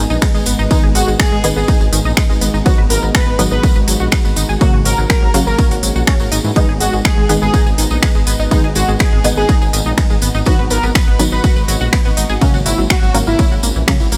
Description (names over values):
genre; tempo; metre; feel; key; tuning
melodic techno; 123 BPM; 4/4; straight; G# minor; A4 = 440 Hz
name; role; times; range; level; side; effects
dark analog pad; sustained chords; 0.0-14.2 s; G#3 to F#5; -29 LUFS; equal; chorus, sidechain pumping
tight sequenced synth; arpeggios; 0.0-14.2 s; D#3 to B4; -26 LUFS; equal; chorus, cassette tape, sidechain pumping, delay
filtered dub chord stab; stabs; 0.0-14.0 s; C#3 to B3; -23 LUFS; equal; ensemble chorus, sidechain pumping, delay
dark detuned saw bass; bass; 0.0-14.2 s; G#1 to G#2; -20 LUFS; equal; tube saturation, sidechain pumping
analog drone; drone; 0.4-14.2 s; G#2 to G#3; -31 LUFS; equal; none
tambourine; percussion; 0.1-14.2 s; none; -28 LUFS; equal; none
electronic kick drum; drums; 0.2-14.0 s; none; -16 LUFS; equal; overdrive
techno drum kit; drums; 0.2-14.2 s; finger snaps, hi-hat, ride cymbal; -24 LUFS; equal; overdrive, sidechain pumping on cymbals, sidechain pumping on hats
fat analog lead; melody; 0.7-13.5 s; C#4 to B4; -25 LUFS; equal; analog chorus, sidechain pumping, digital delay
rich chamber violin section; second line; 0.7-13.5 s; C#4 to B4; -29 LUFS; equal; sidechain pumping, delay
room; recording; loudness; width
little or no reverb; none; -14 LUFS; mono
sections
0.0-14.2 A section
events
none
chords
0.0 G#m; 2.7 B/G#; 4.6 F#/G#; 6.6 G#m; 10.5 B/G#; 12.4 F#/G#